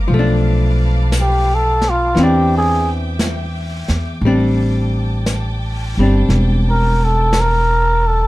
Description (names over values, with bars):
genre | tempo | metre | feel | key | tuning
jazz ballad | 58 BPM | 4/4 | swing 68% on 8ths | unclear | A4 = 440 Hz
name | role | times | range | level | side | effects
archtop guitar, miked and amplified | accompaniment | 0.0-8.3 s | E3 to Eb4 | -19 LUFS | left 1 dB | none
clear studio string section | sustained chords | 0.0-8.3 s | B4 to D6 | -30 LUFS | equal | none
upright bass | bass | 0.0-8.3 s | E1 to E2 | -16 LUFS | equal | none
jazz brush drum kit | drums | 0.1-8.3 s | brushed snare drum, hi-hat, snare drum | -26 LUFS | equal | none
trumpet with cup mute | melody | 1.2-8.3 s | F4 to Bb4 | -16 LUFS | equal | plate reverb
room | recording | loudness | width
light reverb | dark, warm production | -13 LUFS | side -18 dB against mid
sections
0.0-8.3 A section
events
muted trumpet solo 0.0-8.3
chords
0.1 Bm7b5; 2.2 Em7b13; 4.2 Am7